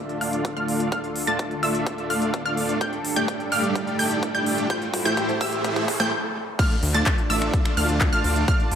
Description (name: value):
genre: EDM, festival progressive house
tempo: 127 BPM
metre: 4/4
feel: straight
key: D minor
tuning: A4 = 442 Hz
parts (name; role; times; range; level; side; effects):
- lush unison pad; sustained chords; 0.0-8.8 s; D3 to A5; -29 LUFS; equal; chorus, phaser, sidechain pumping
- wide unison pluck; arpeggios; 0.0-8.6 s; E6 to A6; -28 LUFS; right 1 dB; sidechain pumping, tape echo
- dense compressed supersaw; riff; 0.0-8.6 s; A3 to A5; -26 LUFS; equal; vintage 12-bit sampler grit, sidechain pumping, low-pass filter, tape echo
- riser and noise sweep; sound effects; 1.5-6.6 s; none; -33 LUFS; right 2 dB; none
- big-room dance drum kit; drums; 0.1-8.8 s; crash cymbal, finger snaps, handclaps, hi-hat; -30 LUFS; left 1 dB; none
- electronic kick drum; drums; 0.4-8.6 s; none; -25 LUFS; equal; high-pass filter on kick, high-pass filter on room
- detuned saw bass; bass; 6.8-8.8 s; A1 to D2; -24 LUFS; equal; sidechain pumping
room: moderate digital room reverb, RT60 1.2 s, digital ambience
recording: none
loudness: -21 LUFS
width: side -8 dB against mid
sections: 0.0-6.6 A section; 6.6-8.8 B section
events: build-up 0.0-6.6; filter sweep on supersaw synth 0.0-6.6; riser 1.5-6.1; drum fill 2.8-6.1; noise sweep 4.7-6.6; stop 6.1-6.6; drop 6.6-8.8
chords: 0.0 Dm; 2.8 Gsus2; 4.7 Am7; 6.6 Dm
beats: 0.45 | 0.92 1.39 1.87 2.34 | 2.81 3.28 3.76 4.23 | 4.70 5.17 5.64 6.12 | 6.59 7.06 7.54 8.01 | 8.48